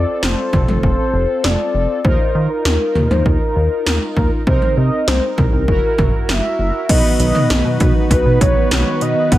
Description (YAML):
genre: synth-pop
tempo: 99 BPM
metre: 4/4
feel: straight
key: unclear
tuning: A4 = 440 Hz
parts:
  - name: mellow horn-like synth lead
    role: melody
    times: 0.0-9.4 s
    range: Bb4 to F#5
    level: -20 LUFS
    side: left 1 dB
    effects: chorus, tape echo
  - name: analog synth brass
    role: accompaniment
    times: 0.0-9.4 s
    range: B3 to B4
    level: -22 LUFS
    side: right 2 dB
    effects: chorus
  - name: chorused synth bass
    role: bass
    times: 0.0-9.4 s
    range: F1 to Eb3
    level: -18 LUFS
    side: equal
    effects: none
  - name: 80s electronic pad drums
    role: drums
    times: 0.2-9.4 s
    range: crash cymbal, hi-hat, kick drum, snare drum, toms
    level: -16 LUFS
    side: equal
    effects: gated reverb on snare and toms
  - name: phased analog pad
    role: sustained chords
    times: 6.9-9.4 s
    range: D#3 to F#4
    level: -23 LUFS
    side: right 2 dB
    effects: phaser, chorus
room: little or no reverb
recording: none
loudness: -13 LUFS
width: side -15 dB against mid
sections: 0.0-6.9 A section; 6.9-9.4 B section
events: none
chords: 0.0 F; 2.0 Ebsus2; 4.5 Cm7; 5.7 Gb7; 6.9 B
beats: 0.23 0.83 1.44 | 2.04 2.65 3.26 3.86 | 4.47 5.08 5.68 6.29 | 6.89 7.50 8.11 8.71 | 9.32